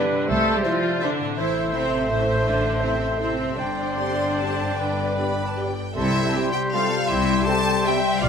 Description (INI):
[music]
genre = classical, orchestral ballroom waltz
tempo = 142-179 BPM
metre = 3/4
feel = rubato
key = C major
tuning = A4 = 440 Hz
[part]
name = mellow hollow silver concert flute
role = second line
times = 0.0-8.3 s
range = D5 to F6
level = -29 LUFS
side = left 2 dB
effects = none
[part]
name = rich studio violin section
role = second line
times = 0.0-8.3 s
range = G4 to E5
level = -30 LUFS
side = equal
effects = none
[part]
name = warm clarinet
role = second line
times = 0.0-8.3 s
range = E4 to E5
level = -30 LUFS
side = left 1 dB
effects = none
[part]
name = warm oboe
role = second line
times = 0.0-8.3 s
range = B4 to D5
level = -31 LUFS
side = right 1 dB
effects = none
[part]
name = clear studio viola section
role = accompaniment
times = 0.0-8.0 s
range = G3 to A4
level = -28 LUFS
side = equal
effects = none
[part]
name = dark bassoon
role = accompaniment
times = 0.0-8.3 s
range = G3 to D4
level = -30 LUFS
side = right 2 dB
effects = none
[part]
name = dark French horn section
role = sustained chords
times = 0.0-8.0 s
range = B3 to G4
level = -35 LUFS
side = equal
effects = none
[part]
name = concert harp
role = arpeggios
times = 0.0-8.3 s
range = G2 to C6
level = -30 LUFS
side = left 12 dB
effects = none
[part]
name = rich studio cello section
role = bass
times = 0.0-8.3 s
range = A2 to A3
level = -30 LUFS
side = right 2 dB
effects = none
[part]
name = dark studio double bass section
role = bass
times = 0.3-8.3 s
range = G1 to C2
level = -29 LUFS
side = right 2 dB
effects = none
[part]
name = rich studio violin section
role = melody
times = 0.6-8.3 s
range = E5 to C6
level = -29 LUFS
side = left 2 dB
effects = none
[part]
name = bright trombone section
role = sustained chords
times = 6.4-8.0 s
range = C3 to G3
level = -33 LUFS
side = right 6 dB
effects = none
[sound]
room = moderate scoring stage reverb, RT60 1.8 s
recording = none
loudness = -20 LUFS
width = side -7 dB against mid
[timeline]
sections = 0.0-6.0 A section; 6.0-8.3 B section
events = none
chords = 0.3 C; 1.4 Am; 3.6 Gsus4; 4.8 G; 6.0 C